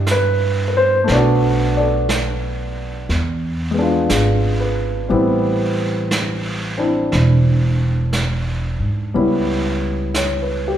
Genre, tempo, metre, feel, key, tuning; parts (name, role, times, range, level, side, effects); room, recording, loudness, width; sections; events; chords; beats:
jazz; 60 BPM; 4/4; swing 66% on 8ths; E minor; A4 = 440 Hz
warm grand piano; accompaniment; 0.0-10.8 s; B2 to F#5; -19 LUFS; left 1 dB
upright bass; bass; 0.0-10.8 s; E1 to G#2; -19 LUFS; right 1 dB
vintage brush drum kit; drums; 0.1-10.8 s; brushed snare drum, hi-hat, snare drum; -26 LUFS; right 2 dB
light reverb; -16 LUFS; side -10 dB against mid
0.0-10.8 A section
0.0 Em11; 1.1 Bm7; 3.1 E7b9; 5.1 Am9; 9.1 C#m7b5
0.08 | 1.09 2.09 3.10 4.10 | 5.10 6.11 7.12 8.13 | 9.14 10.15